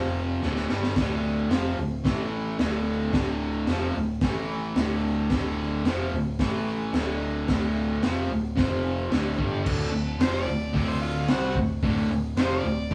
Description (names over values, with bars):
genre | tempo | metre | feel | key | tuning
garage rock duo or trio | 110 BPM | 4/4 | straight | unclear | A4 = 440 Hz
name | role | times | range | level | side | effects
raw garage guitar | riff | 0.0-12.9 s | D2 to C4 | -29 LUFS | equal | overdrive
growling picked electric bass | bass | 0.0-12.9 s | D1 to C2 | -34 LUFS | equal | overdrive
crunchy breakbeat drum kit | drums | 0.4-12.9 s | crash cymbal, hi-hat, kick drum, snare drum, splash cymbal | -30 LUFS | equal | none
overdriven harmonica | melody | 10.2-12.9 s | F4 to D5 | -35 LUFS | equal | none
room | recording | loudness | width
moderate stone room reverb, RT60 1.0 s | band playing live in one room, small room ambience | -26 LUFS | mono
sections
0.0-9.7 A section; 9.7-12.9 B section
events
drum fill 0.4-1.0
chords
0.4 D5; 2.1 A5; 2.6 D5; 4.2 A5; 4.8 D5; 6.4 A5; 6.9 D5; 8.6 F5; 9.1 D5